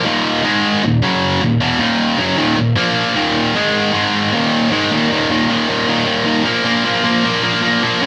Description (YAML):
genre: metal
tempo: 154 BPM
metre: 4/4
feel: straight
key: Eb minor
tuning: A4 = 438 Hz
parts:
  - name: high-gain distorted guitar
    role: solo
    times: 0.0-8.1 s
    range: Eb2 to Db4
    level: -15 LUFS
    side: equal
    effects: distortion
room: moderate studio reverb, RT60 0.5 s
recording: band playing live in one room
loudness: -15 LUFS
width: mono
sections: 0.0-4.9 A section; 4.9-8.1 B section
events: none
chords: 0.0 Eb5; 0.4 Ab5; 0.8 Eb5; 1.0 Gb5; 1.4 Ebm; 2.8 Bb5; 3.2 Eb5; 3.5 Ab5; 4.3 Eb5; 6.5 Bb5